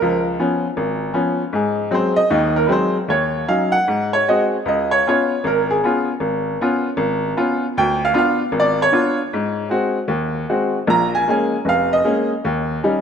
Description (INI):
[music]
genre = solo jazz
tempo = 155 BPM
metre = 4/4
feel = swing 65% on 8ths, rubato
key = unclear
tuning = A4 = 440 Hz
[part]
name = bright upright piano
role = solo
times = 0.0-13.0 s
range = F1 to Bb5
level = -16 LUFS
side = equal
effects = none
[sound]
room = moderate lush hall reverb, RT60 2.4 s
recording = rough home demo mix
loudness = -16 LUFS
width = side -7 dB against mid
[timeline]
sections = 0.0-13.0 A section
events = upright piano solo 0.0-13.0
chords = 0.0 Db7; 1.5 Ab7; 3.1 Ebm7; 3.9 Ab7; 4.7 Db7; 7.8 Ddim7; 9.3 Ab7; 10.9 Bbm7; 12.4 Eb7